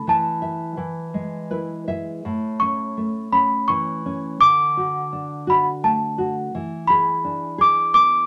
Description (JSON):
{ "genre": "children's music, lullaby", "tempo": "84 BPM", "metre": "3/4", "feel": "rubato", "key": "A major", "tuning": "A4 = 440 Hz", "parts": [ { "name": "small celesta", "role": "melody", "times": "0.0-8.3 s", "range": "A5 to D6", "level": "-20 LUFS", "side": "equal", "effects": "none" }, { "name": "nylon-string guitar", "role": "accompaniment", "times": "0.0-8.3 s", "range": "A2 to E5", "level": "-29 LUFS", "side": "equal", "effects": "none" } ], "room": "moderate studio reverb, RT60 0.6 s", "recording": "none", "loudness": "-21 LUFS", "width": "mono", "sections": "0.0-8.3 A section", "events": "nylon-string guitar fill 1.1-2.2", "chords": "0.1 N.C.; 0.8 E; 2.2 A; 4.4 D; 6.5 E7" }